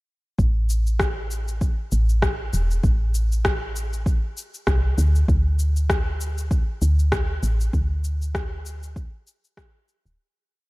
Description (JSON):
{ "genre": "organic downtempo", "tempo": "98 BPM", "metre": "4/4", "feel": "swing 56% on 16ths", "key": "unclear", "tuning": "A4 = 440 Hz", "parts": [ { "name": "woody FM bass", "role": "bass", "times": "0.4-10.2 s", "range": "D1 to D2", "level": "-21 LUFS", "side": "equal", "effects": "tube saturation, sidechain pumping" }, { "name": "electronic kick drum", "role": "drums", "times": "0.4-9.7 s", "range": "none", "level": "-23 LUFS", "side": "equal", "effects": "none" }, { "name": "electronic shaker and rim click", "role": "drums", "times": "0.4-10.2 s", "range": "none", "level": "-28 LUFS", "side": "left 1 dB", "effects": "none" } ], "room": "little or no reverb", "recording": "dark, warm production", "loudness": "-20 LUFS", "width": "side -22 dB against mid", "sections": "0.4-10.2 groove", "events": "fade-out 6.9-10.2", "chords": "none", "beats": "| 0.39 1.00 1.61 2.23 | 2.84 3.45 4.06 4.67 | 5.29 5.90 6.51 7.12 | 7.74 8.35 8.96 9.57" }